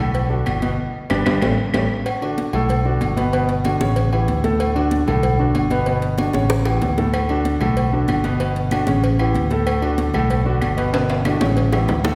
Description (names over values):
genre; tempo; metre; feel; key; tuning
latin, salsa; 189 BPM; 4/4; straight; D major; A4 = 442 Hz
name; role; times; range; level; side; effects
warm concert grand piano; accompaniment; 0.0-12.2 s; A2 to C#5; -24 LUFS; equal; none
fingered electric bass; bass; 0.0-12.2 s; G1 to D2; -24 LUFS; equal; none
agogo bells and timbales; percussion; 0.1-12.1 s; none; -28 LUFS; equal; none
congas; percussion; 0.1-12.2 s; none; -30 LUFS; equal; none
cowbell and bongos; percussion; 0.1-12.2 s; none; -31 LUFS; equal; none
claves; percussion; 0.5-1.8, 7.1-11.9 s; none; -35 LUFS; equal; none
room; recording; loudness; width
wet concert hall reverb, RT60 2.1 s; recorded in a church or concert hall; -19 LUFS; mono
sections
0.0-2.1 A section; 2.1-12.2 A section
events
band accent 0.8-2.1; drum fill 1.4-2.1, 6.5-7.1, 10.9-12.2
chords
0.1 Bm7; 0.8 G; 1.4 A7; 2.1 D6; 2.7 Bm7; 3.3 Gmaj7; 4.0 A7; 4.6 D6; 5.2 Bm7; 5.9 Gmaj7; 6.5 A7; 7.1 D6; 7.8 Bm7; 8.4 Gmaj7; 9.0 A7; 9.7 D6; 10.3 Bm7; 10.9 Gmaj7; 11.6 A7